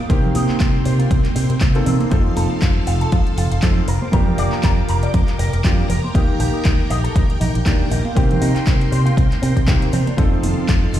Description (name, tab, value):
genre	nu-disco, nu disco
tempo	119 BPM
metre	4/4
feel	swing 56% on 16ths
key	F mixolydian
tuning	A4 = 440 Hz
part	string machine, full ensemble	sustained chords	0.0-11.0 s	Bb3 to D6	-27 LUFS	right 2 dB	ensemble chorus, sidechain pumping
part	electric guitar with an envelope filter	riff	0.0-10.1 s	C4 to Bb5	-28 LUFS	left 1 dB	analog chorus, tape echo
part	clear grand piano	accompaniment	0.1-11.0 s	Eb3 to A4	-24 LUFS	left 1 dB	sidechain pumping, tape echo
part	fingered electric bass with an envelope filter	bass	0.1-11.0 s	F1 to C3	-19 LUFS	equal	none
part	electronic kick drum	drums	0.1-10.8 s	none	-17 LUFS	equal	overdrive
part	pop drum kit	drums	0.1-11.0 s	handclaps, hi-hat	-29 LUFS	equal	overdrive
part	tube shaker and congas	percussion	0.1-11.0 s	none	-27 LUFS	right 4 dB	none
part	wide unison pluck	arpeggios	10.2-11.0 s	Eb3 to Eb4	-27 LUFS	right 4 dB	sidechain pumping, tape echo
room	digital ambience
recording	played on a big sound system in a bare room, stone room reverb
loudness	-15 LUFS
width	side -12 dB against mid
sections	0.0-11.0 A section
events	none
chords	0.1 Cm7; 2.1 F7; 3.9 Bb6/F; 6.1 Ebmaj7; 8.2 Cm7; 10.2 F7